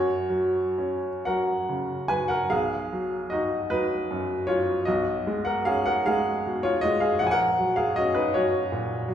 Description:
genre	classical, romantic nocturne for solo piano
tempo	39-54 BPM (dotted quarters)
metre	12/8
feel	rubato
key	F# major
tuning	A4 = 440 Hz
part	bright upright piano	solo	0.0-9.1 s	A#1 to G#5	-23 LUFS	equal	none
room	wet recital hall reverb, RT60 1.6 s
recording	heard from further back in the room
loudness	-23 LUFS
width	side -9 dB against mid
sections	0.0-9.1 A section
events	none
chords	0.0 F#; 2.5 B; 4.9 C#7/B; 7.2 F#/A#

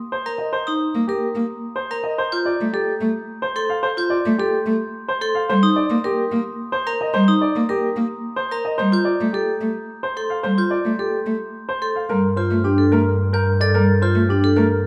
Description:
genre	classical, minimalist pattern music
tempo	109 BPM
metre	3/4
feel	straight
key	unclear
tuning	A4 = 440 Hz
part	clear concert grand piano	melody	0.1-14.7 s	G4 to F5	-27 LUFS	equal	none
part	glockenspiel with brass mallets	arpeggios	0.3-14.2 s	Bb5 to A6	-31 LUFS	equal	none
part	vibraphone with hard mallets	arpeggios	0.3-14.6 s	D4 to Bb4	-25 LUFS	equal	none
part	clear cello	accompaniment	0.9-14.7 s	G3 to Bb3	-24 LUFS	equal	none
part	clear double bass	bass	12.1-14.9 s	G2	-22 LUFS	equal	none
room	wet large studio reverb, RT60 1.4 s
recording	dark, warm production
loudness	-20 LUFS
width	mono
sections	0.0-12.1 A section; 12.1-14.9 B section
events	none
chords	0.0 Cm7; 2.2 Fadd9; 5.5 Cm7; 8.8 Fadd9; 12.1 Gm9

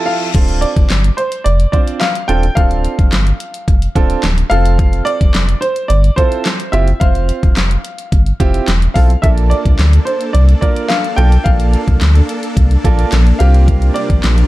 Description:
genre	dance-pop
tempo	108 BPM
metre	4/4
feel	straight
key	D minor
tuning	A4 = 440 Hz
part	clear baby grand piano	accompaniment	0.0-14.3 s	Bb3 to C5	-21 LUFS	right 6 dB	sidechain pumping
part	supersaw chords	sustained chords	0.0-0.3, 9.2-14.5 s	C3 to E5	-23 LUFS	equal	sidechain pumping
part	dark baby grand piano	melody	0.1-14.5 s	C5 to G5	-20 LUFS	equal	ping-pong delay
part	sub bass with octave	bass	0.3-14.4 s	D1 to D2	-12 LUFS	equal	sidechain pumping
part	smooth R&B drum kit	drums	0.3-14.5 s	crash cymbal, handclaps, hi-hat, kick drum, snare drum	-14 LUFS	equal	none
room	little or no reverb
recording	dark, warm production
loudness	-10 LUFS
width	side -17 dB against mid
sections	0.3-14.5 A section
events	break 0.0-0.3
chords	0.3 Dm7; 4.5 Fmaj7; 9.2 Bbmaj7; 13.4 C7sus4

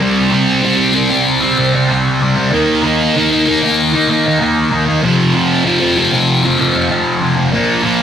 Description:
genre	rock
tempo	96 BPM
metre	4/4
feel	straight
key	unclear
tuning	A4 = 440 Hz
part	thick fuzz guitar	solo	0.0-8.0 s	F2 to Eb4	-11 LUFS	equal	distortion, phaser
room	wet stone room reverb, RT60 1.1 s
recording	rough rehearsal-room recording, warm saturation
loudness	-11 LUFS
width	side -8 dB against mid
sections	0.0-8.0 A section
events	none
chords	0.0 C5; 2.5 Eb5; 5.0 F5; 7.5 Bb5

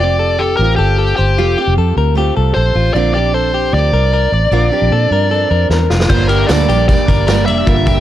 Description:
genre	jangly indie pop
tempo	153 BPM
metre	4/4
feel	straight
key	G minor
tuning	A4 = 440 Hz
part	bluesy overdriven lead guitar	melody	0.0-8.0 s	G4 to E5	-16 LUFS	equal	distortion
part	picked steel-string acoustic guitar	accompaniment	0.0-8.0 s	G2 to Bb4	-20 LUFS	right 9 dB	none
part	direct-recorded clean electric guitar	arpeggios	0.0-8.0 s	F4 to D5	-20 LUFS	left 7 dB	none
part	vintage muted fingered electric bass	bass	0.0-8.0 s	F1 to Bb2	-14 LUFS	equal	none
part	vintage drum kit	drums	5.7-8.0 s	crash cymbal, kick drum, ride cymbal, snare drum	-15 LUFS	equal	none
part	hollow soft pad	sustained chords	6.1-8.0 s	Bb3 to G4	-26 LUFS	right 1 dB	none
part	tambourine	percussion	6.3-8.0 s	none	-35 LUFS	right 5 dB	none
room	small room ambience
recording	dark, warm production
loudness	-11 LUFS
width	side -12 dB against mid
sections	0.0-6.1 A section; 6.1-8.0 B section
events	drum fill 5.7-6.1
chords	0.0 Fadd9; 3.0 Bbadd9; 6.1 Gm

